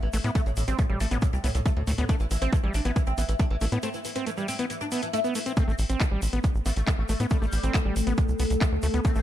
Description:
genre	psychedelic trance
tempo	138 BPM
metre	4/4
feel	straight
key	A minor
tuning	A4 = 441 Hz
part	oud	melody	0.0-5.5 s	A2 to E4	-32 LUFS	left 1 dB	phaser, sidechain pumping, tape echo
part	tight sequencer bass	bass	0.0-9.2 s	A1 to A2	-26 LUFS	equal	tube saturation
part	overdriven acid bass	riff	0.1-9.2 s	G3 to C4	-32 LUFS	moving between left 4 dB and right 4 dB	auto-pan, sidechain pumping, tape echo
part	techno drum kit	drums	0.1-9.1 s	handclaps, hi-hat	-35 LUFS	left 1 dB	none
part	tube shaker	percussion	0.1-9.2 s	none	-43 LUFS	right 5 dB	none
part	electronic kick drum	drums	0.4-9.1 s	none	-24 LUFS	equal	none
part	metallic wobble bass	second line	5.6-9.2 s	G3 to C4	-40 LUFS	left 2 dB	ensemble chorus, cassette tape, sidechain pumping, high-pass filter, digital delay
part	swarming drone	sustained chords	6.8-9.2 s	A3 to A4	-33 LUFS	left 2 dB	built-in reverb, sidechain pumping
room	little or no reverb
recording	dark, warm production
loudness	-24 LUFS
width	side -12 dB against mid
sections	0.0-9.2 A section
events	break 3.8-5.6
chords	0.0 A5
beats	| 0.35 0.79 1.22 1.66 | 2.09 2.53 2.96 3.40 | 3.83 4.26 4.70 5.13 | 5.57 6.00 6.44 6.87 | 7.31 7.74 8.18 8.61 | 9.05

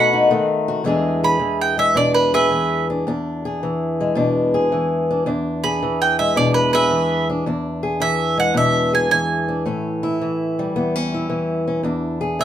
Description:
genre	acoustic country blues, solo or duo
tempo	109 BPM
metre	4/4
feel	swing 68% on 8ths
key	E mixolydian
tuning	A4 = 437 Hz
part	bowl-back mandolin	melody	0.0-12.4 s	B4 to B5	-18 LUFS	right 3 dB	none
part	fingerpicked old ladder-braced acoustic guitar	accompaniment	0.0-12.4 s	E2 to G#4	-19 LUFS	left 2 dB	none
room	wet studio reverb, RT60 0.5 s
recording	minimal, uncompressed stereo recording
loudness	-17 LUFS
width	side -10 dB against mid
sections	0.8-12.4 A section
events	none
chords	0.0 B7; 0.8 E7; 9.7 A7; 11.8 E7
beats	0.29 | 0.84 1.40 1.95 2.50 | 3.05 3.60 4.16 4.71 | 5.26 5.81 6.36 6.91 | 7.46 8.01 8.56 9.11 | 9.66 10.21 10.75 11.30 | 11.85 12.39

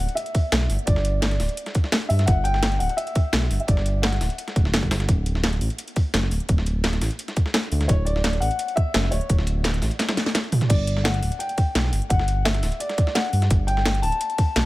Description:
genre	liquid drum and bass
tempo	171 BPM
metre	4/4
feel	straight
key	G lydian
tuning	A4 = 439 Hz
part	dark concert grand piano	melody	0.0-4.7, 7.9-14.7 s	C#5 to A5	-28 LUFS	left 1 dB	dub echo
part	smooth synth bass	bass	0.0-14.7 s	D1 to G2	-22 LUFS	equal	none
part	drum and bass drum kit	drums	0.0-14.6 s	crash cymbal, hi-hat, snare drum, toms	-26 LUFS	equal	none
part	dusty soul sampler-style drum kit	drums	0.1-14.6 s	hi-hat, snare drum	-30 LUFS	equal	high-pass filter on hats, high-pass filter on snare
part	electronic kick drum	drums	0.3-14.5 s	none	-20 LUFS	equal	none
room	digital ambience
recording	none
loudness	-20 LUFS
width	side -18 dB against mid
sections	0.0-14.7 A section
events	drum fill 10.0-10.7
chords	0.0 Gmaj7(no3); 5.1 N.C.; 10.7 Gmaj7(no3)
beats	0.17 0.52 | 0.88 1.23 1.58 1.93 | 2.28 2.63 2.98 3.33 | 3.68 4.03 4.38 4.74 | 5.08 5.44 5.79 6.14 | 6.49 6.84 7.19 7.54 | 7.89 8.24 8.59 8.95 | 9.30 9.65 10.00 10.35 | 10.70 11.05 11.40 11.75 | 12.10 12.45 12.80 13.16 | 13.51 13.86 14.21 14.56

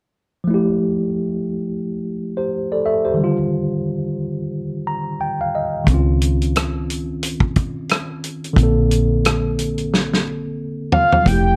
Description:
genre	R&B, neo-soul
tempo	89 BPM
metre	4/4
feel	swing 59% on 16ths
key	F major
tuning	A4 = 440 Hz
part	tine electric piano	accompaniment	0.4-11.6 s	D3 to Bb5	-22 LUFS	equal	overdrive
part	deep dub fingered electric bass	bass	5.9-11.5 s	F1 to Db2	-22 LUFS	equal	none
part	warm soul drum kit	drums	5.9-11.4 s	hi-hat, kick drum, rim click, snare drum, toms	-20 LUFS	equal	none
part	fat analog lead	melody	10.9-11.6 s	F5 to G5	-18 LUFS	equal	none
room	moderate studio reverb, RT60 0.8 s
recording	dark, warm production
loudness	-20 LUFS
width	mono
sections	0.5-11.3 A section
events	tine electric piano fill 4.5-5.9; drum fill 9.9-11.3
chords	0.5 Fmaj9; 3.2 Ebmaj9; 5.9 Dbmaj9; 8.6 Bbmaj9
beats	| 0.47 1.15 1.82 2.50 | 3.17 3.84 4.52 5.19 | 5.87 6.54 7.21 7.89 | 8.56 9.24 9.91 10.58 | 11.26

